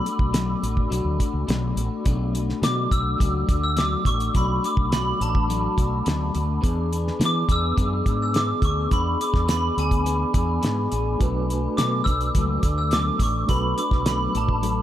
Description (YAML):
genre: indie pop, bedroom pop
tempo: 105 BPM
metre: 4/4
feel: straight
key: B dorian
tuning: A4 = 443 Hz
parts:
  - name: glockenspiel with brass mallets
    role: melody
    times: 0.0-14.8 s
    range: G#5 to E6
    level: -26 LUFS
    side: right 1 dB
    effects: ensemble chorus
  - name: electric guitar through a small old amp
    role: accompaniment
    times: 0.0-14.8 s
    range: B2 to A4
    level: -28 LUFS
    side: left 4 dB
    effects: analog chorus, vibrato effect
  - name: cloth-damped thuddy drum kit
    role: drums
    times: 0.1-14.8 s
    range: hi-hat, kick drum, snare drum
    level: -24 LUFS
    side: equal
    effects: none
  - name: mellow fretless electric bass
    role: bass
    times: 0.2-14.8 s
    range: A1 to E3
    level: -26 LUFS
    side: equal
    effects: lush chorus
  - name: mellow reed electric piano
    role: accompaniment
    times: 11.2-14.8 s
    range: A3 to B4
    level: -32 LUFS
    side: right 4 dB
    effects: fast tremolo
room: studio ambience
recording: none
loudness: -20 LUFS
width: side -12 dB against mid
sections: 0.0-2.1 A section; 2.1-14.8 A section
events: none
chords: 0.0 Bm7; 6.6 E7; 11.2 Bm7